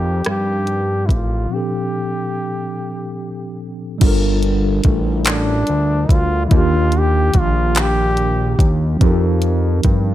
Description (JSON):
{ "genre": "slow six-eight R&B", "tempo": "48 BPM (dotted quarters)", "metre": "6/8", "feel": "straight", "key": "G minor", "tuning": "A4 = 440 Hz", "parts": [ { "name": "clear trombone", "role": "melody", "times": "0.0-8.7 s", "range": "D4 to G4", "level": "-22 LUFS", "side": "equal", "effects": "none" }, { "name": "mellow tine electric piano", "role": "accompaniment", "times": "0.0-10.1 s", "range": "Bb2 to Bb4", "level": "-22 LUFS", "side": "equal", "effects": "medium stereo tremolo" }, { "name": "fat analog bass", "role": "bass", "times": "0.0-10.1 s", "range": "G1 to G2", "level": "-18 LUFS", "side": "equal", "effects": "none" }, { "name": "smooth R&B drum kit", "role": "drums", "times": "0.2-10.0 s", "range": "crash cymbal, handclaps, hi-hat, kick drum, rim click", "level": "-16 LUFS", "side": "equal", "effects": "none" } ], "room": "little or no reverb", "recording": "none", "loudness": "-14 LUFS", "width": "side -13 dB against mid", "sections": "0.0-4.0 A section; 4.0-10.1 B section", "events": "break 1.5-4.0", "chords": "0.0 F9sus4; 1.5 Bbmaj13; 4.0 Gm9; 6.5 Ebmaj9; 9.0 F9sus4", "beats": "0.26 | 1.51 2.76 | 4.01 5.26 | 6.51 7.76 | 9.01" }